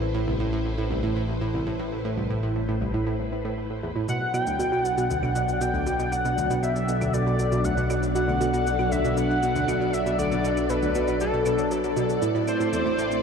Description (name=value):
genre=ambient, sequencer-driven space music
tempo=118 BPM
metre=4/4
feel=straight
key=B phrygian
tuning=A4 = 441 Hz
part: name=phased string machine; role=sustained chords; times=0.0-13.2 s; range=F#3 to D5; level=-29 LUFS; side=left 1 dB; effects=ensemble chorus, phaser
part: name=analog pluck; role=riff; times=0.0-13.2 s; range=C2 to F#3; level=-27 LUFS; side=right 2 dB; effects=chorus, ping-pong delay
part: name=fat analog bass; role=bass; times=0.0-13.2 s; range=A1 to B1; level=-31 LUFS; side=left 1 dB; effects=none
part: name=pulsing gated texture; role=texture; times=0.0-13.2 s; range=A4 to B5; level=-35 LUFS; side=left 4 dB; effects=chorus, built-in reverb
part: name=pulse-width lead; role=melody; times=4.1-13.2 s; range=A4 to G5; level=-27 LUFS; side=left 1 dB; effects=chorus, ping-pong delay
part: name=cabasa and claves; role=percussion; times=4.1-13.2 s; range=none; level=-42 LUFS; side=left 1 dB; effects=ping-pong delay
room=wet huge ambient reverb, RT60 8.6 s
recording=none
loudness=-22 LUFS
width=side -6 dB against mid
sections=0.0-13.2 A section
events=fade-in on string machine 0.0-13.2; fade-in on synth texture 0.0-13.2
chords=0.0 Amadd9; 4.1 Bm; 12.2 Am